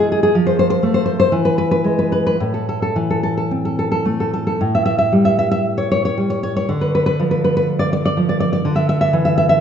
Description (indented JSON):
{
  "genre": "romantic piece for solo classical guitar",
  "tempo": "53-66 BPM",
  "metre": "2/4",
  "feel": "rubato",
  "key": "A minor",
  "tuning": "A4 = 442 Hz",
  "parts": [
    { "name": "nylon-string guitar", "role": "solo", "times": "0.0-9.6 s", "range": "A2 to E5", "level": "-15 LUFS", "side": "equal", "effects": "none" }
  ],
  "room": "wet recital hall reverb, RT60 1.5 s",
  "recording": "recorded in a church or concert hall, nothing above 7.8 kHz",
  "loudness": "-15 LUFS",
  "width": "side -8 dB against mid",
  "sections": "0.0-4.6 A section; 4.6-9.6 B section",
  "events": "none",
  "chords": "0.3 F; 1.3 E; 2.4 Am; 4.6 A7; 6.7 Dm; 8.7 Dsus2",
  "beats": "| 0.34 1.31 | 2.39 3.50 | 4.59 5.65 | 6.68 7.68 | 8.67"
}